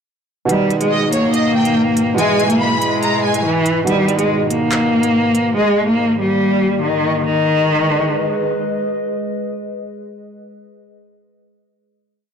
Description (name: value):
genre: hip hop, drill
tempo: 142 BPM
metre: 4/4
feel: half-time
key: G# harmonic minor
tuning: A4 = 441 Hz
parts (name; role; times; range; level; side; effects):
- warm cello; melody; 0.5-8.5 s; D#3 to A#3; -15 LUFS; equal; low-pass filter
- dark grand piano; accompaniment; 0.5-5.6 s; B2 to E4; -22 LUFS; right 4 dB; low-pass filter
- warbly tape-like pad; sustained chords; 1.0-10.6 s; G#2 to D#5; -24 LUFS; left 2 dB; chorus, built-in reverb
- drill drum kit; drums; 0.5-5.4 s; handclaps, hi-hat; -24 LUFS; right 2 dB; none
- warm studio violin section; second line; 0.9-3.4 s; C#5 to B5; -20 LUFS; left 1 dB; digital delay
room: light reverb, small room ambience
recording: blown-out, overdriven recording, overdrive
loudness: -14 LUFS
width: side -7 dB against mid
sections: 0.5-7.3 breakdown; 7.3-10.6 final chord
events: none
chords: 0.5 G#m; 2.2 E/G#; 3.9 G#m; 5.6 D#/G#; 7.3 G#m